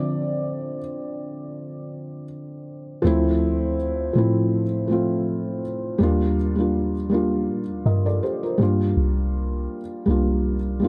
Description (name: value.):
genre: contemporary R&B.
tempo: 81 BPM.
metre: 4/4.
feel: swing 54% on 16ths.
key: D minor.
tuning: A4 = 441 Hz.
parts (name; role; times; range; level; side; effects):
felt-muted upright piano; accompaniment; 0.0-10.9 s; D3 to Eb5; -25 LUFS; equal; none.
soft 808-style bass; bass; 3.0-10.9 s; C2 to Bb2; -26 LUFS; equal; none.
room: light reverb, studio reverb.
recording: none.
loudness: -23 LUFS.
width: mono.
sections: 0.0-3.0 A section; 3.0-10.9 B section.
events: felt piano solo 0.0-3.0.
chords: 0.0 Dm7; 3.0 Dm9; 6.0 Ebmaj9; 8.6 C9sus4.